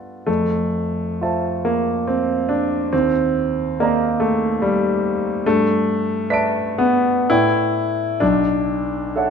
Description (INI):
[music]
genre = classical, impressionist solo piano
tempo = 57-73 BPM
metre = 3/4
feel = rubato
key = unclear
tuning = A4 = 441 Hz
[part]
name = warm concert grand piano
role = solo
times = 0.0-9.3 s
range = B1 to D7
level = -17 LUFS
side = equal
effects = none
[sound]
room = wet recital hall reverb, RT60 1.4 s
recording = none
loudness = -17 LUFS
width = side -6 dB against mid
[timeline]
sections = 0.0-9.3 A section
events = none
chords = 0.3 Fmaj7; 2.9 Ebmaj7; 5.5 G69; 7.3 A9sus4; 8.2 Bm11